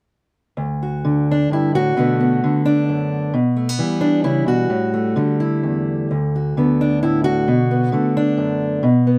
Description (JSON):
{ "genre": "folk, solo fingerstyle acoustic guitar", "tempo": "132 BPM", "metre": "3/4", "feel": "rubato", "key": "D major", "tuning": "A4 = 440 Hz", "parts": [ { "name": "fingerpicked acoustic archtop guitar", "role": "solo", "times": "0.6-9.2 s", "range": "D2 to F#4", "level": "-18 LUFS", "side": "equal", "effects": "none" } ], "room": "light reverb", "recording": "band playing live in one room", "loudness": "-18 LUFS", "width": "mono", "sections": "0.6-9.2 A section", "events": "none", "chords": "0.6 D; 2.0 Bm7; 3.3 Em/B; 4.7 A7sus4; 6.1 D6; 7.5 Bm7" }